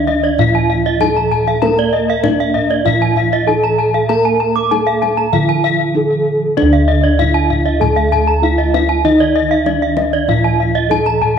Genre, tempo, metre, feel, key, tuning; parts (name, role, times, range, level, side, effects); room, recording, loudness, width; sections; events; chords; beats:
Balinese gamelan; 97 BPM; 4/4; straight; D pelog; A4 = 440 Hz
gamelan-type bronze metallophone; melody; 0.0-11.4 s; D4 to Bb4-40c; -18 LUFS; right 1 dB; tape echo
gamelan-type bronze metallophone; accompaniment; 0.0-11.4 s; D3 to Bb3-40c; -24 LUFS; right 10 dB
gamelan-type bronze metallophone; arpeggios; 0.0-11.2 s; D5 to D6; -19 LUFS; right 8 dB
gamelan-type bossed gongs; bass; 0.0-11.4 s; D2 to Bb4-40c; -17 LUFS; equal
gamelan-type bronze metallophone; arpeggios; 0.1-11.4 s; D5 to Bb5-40c; -18 LUFS; left 9 dB; tape echo
kendang; percussion; 0.1-11.4 s; -24 LUFS; left 8 dB
moderate echo chamber reverb, RT60 2.2 s; 1960s-style stereo with parts hard left and right; -12 LUFS; side -7 dB against mid
0.0-11.4 A section
0.39 1.01 | 1.62 2.24 2.86 3.48 | 4.10 4.72 5.34 5.95 | 6.57 7.19 7.81 8.43 | 9.05 9.67 10.28 10.90